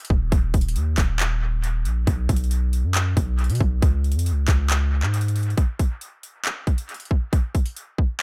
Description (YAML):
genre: hip hop, trap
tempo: 137 BPM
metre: 4/4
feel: half-time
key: unclear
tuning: A4 = 439 Hz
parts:
  - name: trap drum kit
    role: drums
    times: 0.0-8.1 s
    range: handclaps, hi-hat, kick drum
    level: -25 LUFS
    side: equal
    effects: overdrive, dub echo
  - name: long sustained 808-style bass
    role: bass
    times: 0.1-5.5 s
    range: Eb1 to B2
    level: -24 LUFS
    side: equal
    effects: none
room: little or no reverb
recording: echo-heavy mix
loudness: -22 LUFS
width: mono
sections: 0.0-5.6 A section; 5.6-8.2 B section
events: none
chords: none